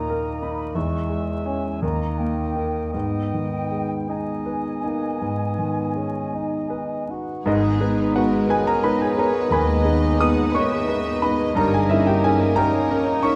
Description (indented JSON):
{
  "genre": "classical, romantic movement for piano and orchestra",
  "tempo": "50-61 BPM (dotted quarters)",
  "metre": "12/8",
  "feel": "rubato",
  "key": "G# minor",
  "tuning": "A4 = 437 Hz",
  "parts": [
    { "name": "clear concert grand piano", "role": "melody", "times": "0.0-13.4 s", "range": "D#2 to D#6", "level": "-24 LUFS", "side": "equal", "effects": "none" },
    { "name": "mellow cor anglais", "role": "second line", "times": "0.0-13.4 s", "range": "D#5 to E5", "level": "-35 LUFS", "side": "equal", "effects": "none" },
    { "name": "mellow flute section", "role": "second line", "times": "0.0-13.4 s", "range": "B4 to C#6", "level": "-36 LUFS", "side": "equal", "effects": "none" },
    { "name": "mellow bassoon", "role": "accompaniment", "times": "0.0-13.4 s", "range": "G#3 to F#4", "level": "-34 LUFS", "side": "equal", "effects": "none" },
    { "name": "dark French horn section", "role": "sustained chords", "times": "0.0-13.4 s", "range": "G#3 to E4", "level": "-31 LUFS", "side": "equal", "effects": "none" },
    { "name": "rich studio violin section", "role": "second line", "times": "7.4-13.4 s", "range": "G#4 to F#5", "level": "-37 LUFS", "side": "equal", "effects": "none" },
    { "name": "dark studio violin section", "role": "melody", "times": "7.5-13.4 s", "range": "A#4 to B4", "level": "-36 LUFS", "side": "equal", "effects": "none" },
    { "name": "warm studio viola section", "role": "accompaniment", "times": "7.5-13.4 s", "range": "D#3 to D#4", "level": "-32 LUFS", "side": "equal", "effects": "none" },
    { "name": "dark studio double bass section", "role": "bass", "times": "7.5-12.4 s", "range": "G1 to D#2", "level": "-30 LUFS", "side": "equal", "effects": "none" },
    { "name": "warm studio cello section", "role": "bass", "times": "7.5-12.4 s", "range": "D#2 to G#2", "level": "-32 LUFS", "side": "equal", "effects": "none" }
  ],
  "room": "moderate recital hall reverb, RT60 1.6 s",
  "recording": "close, detailed microphones, vinyl crackle",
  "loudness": "-22 LUFS",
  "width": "mono",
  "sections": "0.0-7.5 A section; 7.5-13.4 A section",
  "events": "none",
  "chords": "0.0 D#5; 0.8 C#m/E; 1.8 D#; 2.9 G#m; 11.6 D#7/G"
}